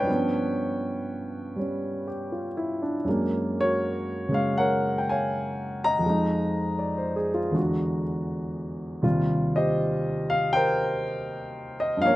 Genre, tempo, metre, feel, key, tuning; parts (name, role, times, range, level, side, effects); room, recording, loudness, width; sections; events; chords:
solo jazz; 80 BPM; 4/4; swing 69% on 8ths; A4 = 440 Hz
warm concert grand piano; solo; 0.0-12.2 s; Eb2 to Bb5; -24 LUFS; equal
light reverb; recorded outdoors, with no room sound; -24 LUFS; side -16 dB against mid
0.0-12.2 A section
0.1 G7#11; 3.1 Gbmaj9; 6.0 Fm7; 7.5 E9; 9.0 Eb69